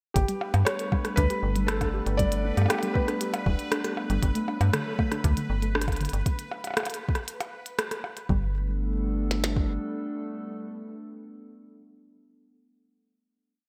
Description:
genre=IDM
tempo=118 BPM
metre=4/4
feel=straight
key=G major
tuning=A4 = 440 Hz
part: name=felt-muted upright piano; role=melody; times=0.1-3.7 s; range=G4 to D5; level=-34 LUFS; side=equal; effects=digital delay
part: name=warbly tape-like pad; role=sustained chords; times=0.5-11.9 s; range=F#3 to A4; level=-36 LUFS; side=equal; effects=chorus, built-in reverb
part: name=metallic FM bass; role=bass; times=0.2-9.8 s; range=D1 to G2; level=-29 LUFS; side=equal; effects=tube saturation
part: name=glitchy drum kit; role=drums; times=0.2-9.7 s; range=kick drum, snare drum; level=-29 LUFS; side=equal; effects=overdrive
part: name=glitchy drum kit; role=drums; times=0.2-8.3 s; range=hi-hat, percussion blips, rim click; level=-33 LUFS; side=equal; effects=gated reverb, digital delay
part: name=bubbling stepped-filter texture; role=texture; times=0.2-8.3 s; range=B4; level=-42 LUFS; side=equal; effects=chorus, built-in reverb
part: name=warbly dusty pluck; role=arpeggios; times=0.3-8.5 s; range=D3 to G4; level=-37 LUFS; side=equal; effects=chorus, digital delay
room=moderate lush hall reverb, RT60 1.7 s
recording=bright 1980s-style digital production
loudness=-27 LUFS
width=mono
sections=0.2-8.3 groove; 8.3-12.4 final chord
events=none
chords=0.2 Gadd9; 4.2 D6/G; 6.3 N.C.; 8.3 Gadd9

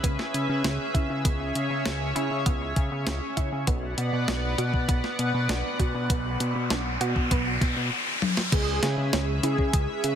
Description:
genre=synthwave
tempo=99 BPM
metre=4/4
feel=straight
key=C# phrygian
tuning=A4 = 440 Hz
part: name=chorused pulse-width pad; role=sustained chords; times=0.0-10.2 s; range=B3 to F#5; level=-31 LUFS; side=equal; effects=sidechain pumping
part: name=wide unison pluck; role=arpeggios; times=0.0-9.9 s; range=B3 to G#4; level=-35 LUFS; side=right 3 dB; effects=ping-pong delay
part: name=fat analog bass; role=bass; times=0.0-10.2 s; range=B1 to C#3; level=-29 LUFS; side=equal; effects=tube saturation, sidechain pumping
part: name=clean 12-bit digital drum machine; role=drums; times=0.0-10.2 s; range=crash cymbal, hi-hat, snare drum, toms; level=-30 LUFS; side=left 1 dB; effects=overdrive, small room ambience
part: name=electronic kick drum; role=drums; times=0.0-9.9 s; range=none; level=-25 LUFS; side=equal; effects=overdrive, small room ambience
part: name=riser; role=sound effects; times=5.1-8.5 s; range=none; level=-31 LUFS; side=left 1 dB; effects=none
part: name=mellow synth brass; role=melody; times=8.5-10.2 s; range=G#4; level=-29 LUFS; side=right 2 dB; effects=chorus
room=light reverb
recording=dense, heavily limited modern master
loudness=-24 LUFS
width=side -9 dB against mid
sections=0.0-8.5 A section; 8.5-10.2 B section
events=filter sweep on synth arpeggio sound 0.0-8.5; riser 5.1-8.5; drum fill 8.2-8.5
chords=0.0 C#m7; 3.7 Bm; 8.5 C#m7

